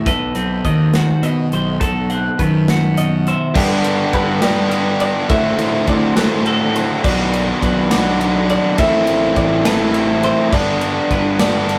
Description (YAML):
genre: math rock and midwest emo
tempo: 69 BPM (dotted quarters)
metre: 6/8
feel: straight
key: unclear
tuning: A4 = 440 Hz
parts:
  - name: electric guitar at the edge of break-up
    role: accompaniment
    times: 0.0-3.5 s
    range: B2 to C5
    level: -19 LUFS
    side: equal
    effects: none
  - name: twelve-string electric guitar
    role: arpeggios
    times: 0.0-11.8 s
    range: A4 to F#5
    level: -26 LUFS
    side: equal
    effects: none
  - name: fuzz picked electric bass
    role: bass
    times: 0.0-11.8 s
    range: G1 to B2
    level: -24 LUFS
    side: equal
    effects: overdrive
  - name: modern studio drum kit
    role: drums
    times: 0.1-11.8 s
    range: crash cymbal, hi-hat, kick drum, ride cymbal, snare drum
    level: -24 LUFS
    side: equal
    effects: none
  - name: biting overdriven guitar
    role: riff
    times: 3.5-11.8 s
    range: G2 to G4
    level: -18 LUFS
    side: equal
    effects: none
room: wet studio reverb, RT60 0.6 s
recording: rough rehearsal-room recording, tube saturation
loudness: -16 LUFS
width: mono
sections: 0.0-3.6 A section; 3.6-11.8 B section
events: none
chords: 0.1 B7b9; 3.6 G; 5.3 Dsus2/A; 7.0 Bm; 8.8 Amadd9; 10.5 G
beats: | 0.07 0.95 | 1.82 2.69 | 3.56 4.43 | 5.30 6.17 | 7.04 7.91 | 8.78 9.65 | 10.53 11.40